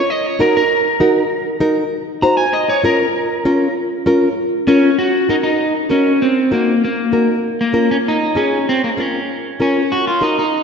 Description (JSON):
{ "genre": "latin", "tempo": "196 BPM", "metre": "4/4", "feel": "straight", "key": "Eb dorian", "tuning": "A4 = 439 Hz", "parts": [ { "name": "electric guitar at the edge of break-up", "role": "melody", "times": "0.0-10.6 s", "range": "Bb3 to Bb5", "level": "-16 LUFS", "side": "equal", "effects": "spring reverb, analog delay" }, { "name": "nylon-string guitar", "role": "accompaniment", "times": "0.4-10.4 s", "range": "Db4 to C5", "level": "-17 LUFS", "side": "equal", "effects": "none" } ], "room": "wet lush hall reverb, RT60 2.6 s", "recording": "dreamy mix soaked in reverb, nothing above 8.0 kHz", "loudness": "-13 LUFS", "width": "side -6 dB against mid", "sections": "0.0-5.0 A section; 5.0-10.6 B section", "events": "clean electric guitar solo 0.0-5.0", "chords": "0.1 Ebm; 2.5 Bbm; 5.0 Ebm; 7.4 Bbm; 9.9 Ebm" }